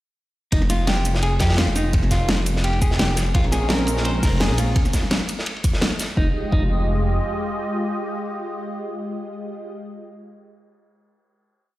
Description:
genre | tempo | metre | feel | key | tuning
liquid drum and bass | 170 BPM | 4/4 | straight | F minor | A4 = 439 Hz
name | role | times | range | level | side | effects
clean electric guitar | arpeggios | 0.5-6.6 s | Eb4 to C5 | -28 LUFS | right 1 dB | spring reverb, digital delay
dark detuned saw bass | bass | 0.5-7.2 s | F1 to F2 | -21 LUFS | equal | none
crunchy breakbeat drum kit | drums | 0.5-6.1 s | hi-hat, ride cymbal, snare drum | -29 LUFS | equal | high-pass filter on cymbals, studio reverb, high-pass filter on hats, high-pass filter on snare, high-pass filter on room
electronic kick drum | drums | 0.5-6.6 s | none | -20 LUFS | equal | studio reverb
pop drum kit | drums | 0.5-6.1 s | hi-hat, shaker, snare drum | -25 LUFS | equal | studio reverb
warm analog pad | sustained chords | 3.3-9.8 s | Ab3 to Eb5 | -27 LUFS | equal | chorus, sidechain pumping
room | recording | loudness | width
light reverb, small room ambience | played on a big sound system in a bare room, large studio reverb | -19 LUFS | side -16 dB against mid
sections
0.5-6.2 drop; 6.2-9.0 final chord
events
drop 0.5-6.2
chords
0.5 Fsus2; 3.3 Bbm9; 4.8 N.C.; 6.2 Fm9

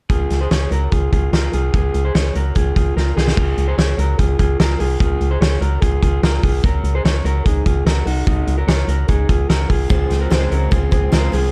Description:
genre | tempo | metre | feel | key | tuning
jangly indie pop | 147 BPM | 4/4 | straight | Db major | A4 = 439 Hz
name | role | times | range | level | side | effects
electric guitar through a small old amp | arpeggios | 0.1-11.5 s | Eb4 to Db5 | -25 LUFS | equal | none
organ-like FM bass | bass | 0.1-11.5 s | C2 to Db2 | -21 LUFS | equal | none
loose indie drum kit | drums | 0.1-11.4 s | crash cymbal, hi-hat, kick drum, snare drum | -21 LUFS | equal | none
picked twelve-string acoustic guitar | accompaniment | 9.9-11.5 s | Db3 to C4 | -27 LUFS | equal | none
room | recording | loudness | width
light reverb, small room ambience | none | -17 LUFS | mono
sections
0.1-3.4 A section; 3.4-11.5 B section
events
drum fill 3.0-3.4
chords
0.1 Db; 6.6 Ebm7; 9.9 Fm

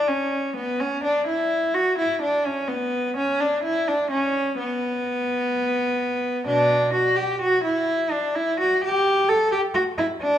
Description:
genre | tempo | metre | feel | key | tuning
classical, baroque-style suite movement for unaccompanied cello | 64 BPM | 4/4 | rubato | B minor | A4 = 440 Hz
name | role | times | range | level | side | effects
rich cello | solo | 0.0-10.4 s | B2 to A4 | -20 LUFS | equal | none
room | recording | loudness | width
wet recital hall reverb, RT60 1.6 s | minimal, uncompressed stereo recording | -20 LUFS | side -10 dB against mid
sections
0.0-10.4 A section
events
none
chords
none

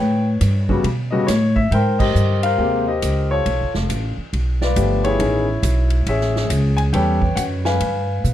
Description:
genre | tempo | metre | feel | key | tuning
jazz piano trio | 138 BPM | 4/4 | swing 65% on 8ths | unclear | A4 = 440 Hz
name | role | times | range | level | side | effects
warm baby grand piano | melody | 0.0-8.3 s | C3 to G#5 | -20 LUFS | left 2 dB | none
upright bass | bass | 0.0-8.3 s | F1 to B2 | -19 LUFS | equal | none
swinging big-band drum kit | drums | 0.4-8.3 s | crash cymbal, hi-hat, kick drum, ride cymbal, snare drum | -27 LUFS | right 2 dB | none
room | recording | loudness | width
light reverb | dark, warm production | -16 LUFS | side -12 dB against mid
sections
0.0-8.3 A section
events
band accent 1.9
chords
0.0 A9; 1.7 Abmaj9; 3.5 G9; 5.2 Amaj9; 6.9 A9; 7.8 G7b9

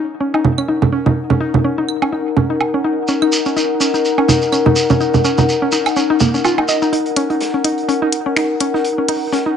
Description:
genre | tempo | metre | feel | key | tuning
minimal techno | 125 BPM | 4/4 | swing 57% on 16ths | Eb minor | A4 = 441 Hz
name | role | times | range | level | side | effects
warbly tape-like pad | texture | 0.0-9.6 s | Eb4 to Gb5 | -18 LUFS | left 4 dB | chorus, built-in reverb
mallet-like synth pluck | riff | 0.2-9.5 s | Bb3 to Eb5 | -18 LUFS | equal | chorus, tape echo
woodblock, congas and claves | percussion | 0.3-6.7 s | none | -16 LUFS | right 4 dB | overdrive, small room ambience
shekere | percussion | 3.1-6.9 s | none | -21 LUFS | right 1 dB | none
crunchy breakbeat drum kit | drums | 6.9-9.5 s | hi-hat, snare drum | -29 LUFS | right 1 dB | high-pass filter on hats, small room ambience, high-pass filter on snare, high-pass filter on room
minimal click drum kit | drums | 7.2-9.2 s | finger snaps, hi-hat | -18 LUFS | left 1 dB | high-pass filter on hats, low-pass filter on hats, small room ambience, high-pass filter on snare, low-pass filter on snare
room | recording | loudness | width
moderate plate reverb, RT60 1.9 s, studio ambience | nothing above 10.8 kHz | -13 LUFS | side -8 dB against mid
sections
0.0-6.9 A section; 6.9-9.6 B section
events
build-up 6.9-9.6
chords
0.0 Ebm7

